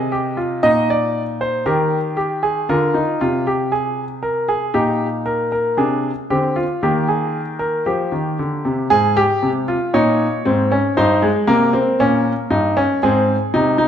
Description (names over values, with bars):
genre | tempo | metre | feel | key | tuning
classical, baroque-style 3-part fugue for grand piano | 58 BPM | 4/4 | straight | Ab major | A4 = 440 Hz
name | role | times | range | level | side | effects
clear grand piano | solo | 0.0-13.9 s | G2 to Eb5 | -15 LUFS | equal | none
room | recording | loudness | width
moderate recital hall reverb, RT60 1.7 s | dark, warm production | -16 LUFS | side -9 dB against mid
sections
0.0-8.9 A section; 8.9-13.9 B section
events
none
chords
0.0 Ab/C; 0.6 Eb/Bb; 2.7 Bb7; 4.7 Eb/Bb; 6.8 Eb; 8.9 Ab; 11.0 Eb7/G; 13.0 Ab